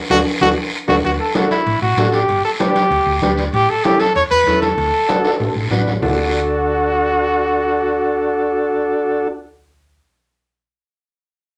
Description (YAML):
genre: latin, cumbia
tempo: 192 BPM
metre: 4/4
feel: straight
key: D major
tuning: A4 = 439 Hz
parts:
  - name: warm trumpet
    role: melody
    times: 0.1-9.3 s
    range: E4 to C#5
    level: -20 LUFS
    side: equal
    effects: none
  - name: breathy clarinet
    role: second line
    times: 0.1-1.0 s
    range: D4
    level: -29 LUFS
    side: equal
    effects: none
  - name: combo organ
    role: accompaniment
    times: 0.1-9.3 s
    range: C#4 to B4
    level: -21 LUFS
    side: equal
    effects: none
  - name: hollow-body short-scale fingered electric bass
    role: bass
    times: 0.1-10.0 s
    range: G1 to E2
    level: -26 LUFS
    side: equal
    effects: none
  - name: congas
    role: percussion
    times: 0.1-6.1 s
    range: none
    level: -25 LUFS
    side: equal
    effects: none
  - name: guiro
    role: percussion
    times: 0.1-6.1 s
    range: none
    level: -30 LUFS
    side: equal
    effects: none
  - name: timbales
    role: percussion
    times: 0.1-6.1 s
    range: none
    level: -29 LUFS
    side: equal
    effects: none
room: wet studio reverb, RT60 0.5 s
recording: none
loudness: -17 LUFS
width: mono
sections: 0.0-1.0 A section; 1.0-6.0 B section; 6.0-8.5 C section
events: band accent 0.0-1.0; drum fill 0.1-1.0, 5.1-6.0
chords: 0.0 D; 2.3 G; 3.5 A; 4.8 D